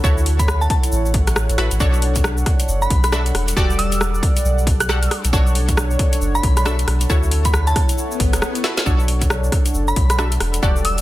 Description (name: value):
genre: UK garage, two-step garage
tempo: 136 BPM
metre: 4/4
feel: swing 61% on 16ths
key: B minor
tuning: A4 = 442 Hz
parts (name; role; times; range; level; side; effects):
- warm analog pad; sustained chords; 0.0-11.0 s; G3 to F#5; -27 LUFS; equal; chorus, sidechain pumping
- punchy chord stab; stabs; 0.0-11.0 s; D4 to F#5; -25 LUFS; equal; chorus, digital delay
- saturated sub bass; bass; 0.0-11.0 s; D1 to D2; -19 LUFS; equal; tube saturation
- electronic kick drum; drums; 0.0-10.7 s; none; -19 LUFS; equal; small room reverb
- garage drum kit; drums; 0.0-11.0 s; hi-hat, rim click, shaker, snare drum; -24 LUFS; equal; small room reverb, soft clipping on snare
- glassy synth bell; melody; 0.4-11.0 s; A5 to F#6; -24 LUFS; right 1 dB; chorus, tremolo, digital delay
- swell; sound effects; 8.1-8.9 s; none; -27 LUFS; left 6 dB; none
room: digital ambience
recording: dense, heavily limited modern master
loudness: -15 LUFS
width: side -16 dB against mid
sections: 0.0-11.0 A section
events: swell 8.1-8.9; drum fill 8.6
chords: 0.0 Dmaj9; 1.8 Bm9; 3.3 Em11; 5.1 Bm9; 7.1 Dmaj9; 8.9 Bm9; 10.4 Em11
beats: | 0.04 0.48 0.92 1.36 | 1.80 2.24 2.69 3.13 | 3.57 4.01 4.45 4.89 | 5.33 5.77 6.21 6.66 | 7.10 7.54 7.98 8.42 | 8.86 9.30 9.74 10.19 | 10.63